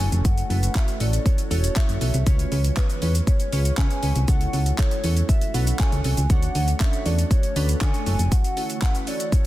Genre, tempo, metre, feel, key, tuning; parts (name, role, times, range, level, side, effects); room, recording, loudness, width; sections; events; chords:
dance-pop; 119 BPM; 4/4; straight; F# minor; A4 = 441 Hz
hollow clarinet-like synth lead; melody; 0.0-9.5 s; B4 to G#5; -31 LUFS; equal; chorus, tape echo
glassy digital keys; accompaniment; 0.0-9.5 s; C#4 to E5; -32 LUFS; right 3 dB; chorus, sidechain pumping
ethereal airy pad; sustained chords; 0.0-9.5 s; C#3 to F#4; -34 LUFS; right 1 dB; ensemble chorus, built-in reverb, phaser, sidechain pumping
solid FM bass; bass; 0.0-8.3 s; E1 to D3; -21 LUFS; equal; sidechain pumping
pop drum kit; drums; 0.0-9.4 s; handclaps, hi-hat, kick drum, shaker; -22 LUFS; equal
little or no reverb; dense, heavily limited modern master; -19 LUFS; side -16 dB against mid
0.0-9.5 A section
0.0 F#m7; 2.3 C#7; 4.3 F#m7/C#; 6.3 Dmaj7; 8.1 F#m7